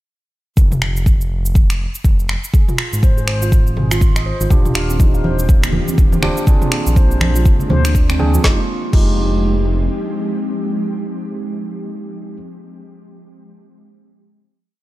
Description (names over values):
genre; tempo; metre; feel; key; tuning
afro house; 122 BPM; 4/4; swing 59% on 16ths; F dorian; A4 = 445 Hz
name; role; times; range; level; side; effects
smooth synth bass; bass; 0.6-9.9 s; Eb1 to D2; -18 LUFS; equal; sidechain pumping
deep house drum kit; drums; 0.6-9.1 s; crash cymbal, finger snaps, shaker, snare drum, toms; -22 LUFS; equal; studio reverb
electronic kick drum; drums; 0.6-9.1 s; none; -12 LUFS; equal; studio reverb
handpan; arpeggios; 2.5-9.1 s; C4 to F5; -26 LUFS; right 2 dB; sidechain pumping, tape echo
ethereal airy pad; sustained chords; 5.2-11.9 s; Eb3 to G4; -25 LUFS; left 1 dB; ensemble chorus, built-in reverb, sidechain pumping
overdriven tine electric piano; stabs; 4.5-12.4 s; Ab3 to Ab4; -24 LUFS; right 2 dB; sidechain pumping, tape echo
congas; percussion; 4.5-8.4 s; none; -22 LUFS; right 1 dB; none
room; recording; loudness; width
little or no reverb; none; -13 LUFS; side -17 dB against mid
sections
0.6-8.4 groove; 8.4-12.4 final chord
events
none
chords
0.6 N.C.; 2.5 Ab6; 4.5 Ebmaj7; 6.5 Bb7; 8.4 Fm9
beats
| 0.57 1.06 1.56 2.05 | 2.54 3.03 3.52 4.01 | 4.51 5.00 5.49 5.98 | 6.47 6.97 7.46 7.95 | 8.44 8.93 9.43 9.92 | 10.41 10.90 11.39 11.88